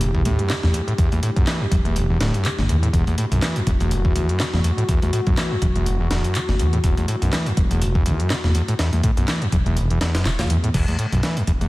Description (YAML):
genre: breakbeat, breaks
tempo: 123 BPM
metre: 4/4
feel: swing 56% on 16ths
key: E minor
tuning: A4 = 439 Hz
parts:
  - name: dark analog pad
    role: sustained chords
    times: 0.0-10.7 s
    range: D4 to G4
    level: -31 LUFS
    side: left 2 dB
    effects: chorus, sidechain pumping
  - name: screaming distorted acid line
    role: riff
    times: 0.0-11.7 s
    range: E1 to E3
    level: -22 LUFS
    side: equal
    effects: distortion, chorus, cassette tape, digital delay
  - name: dark detuned saw bass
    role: bass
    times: 0.0-11.7 s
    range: D1 to E2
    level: -22 LUFS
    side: equal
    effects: none
  - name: breakbeat sampler-style drum kit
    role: drums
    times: 0.0-11.7 s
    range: crash cymbal, hi-hat, kick drum, snare drum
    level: -23 LUFS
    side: equal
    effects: studio reverb
  - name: garage drum kit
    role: drums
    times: 0.0-11.7 s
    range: handclaps, hi-hat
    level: -32 LUFS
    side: equal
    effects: studio reverb
  - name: congas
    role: percussion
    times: 0.3-11.7 s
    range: none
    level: -31 LUFS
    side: left 2 dB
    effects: none
room: light reverb, digital ambience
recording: dense, heavily limited modern master, vinyl crackle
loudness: -18 LUFS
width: side -19 dB against mid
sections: 0.0-10.7 A section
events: drop 0.0-10.7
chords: 0.0 Em9; 10.7 N.C.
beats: 0.01 0.50 | 0.98 1.47 1.96 2.45 | 2.94 3.42 3.91 4.40 | 4.89 5.38 5.86 6.35 | 6.84 7.33 7.82 8.30 | 8.79 9.28 9.77 10.25 | 10.74 11.23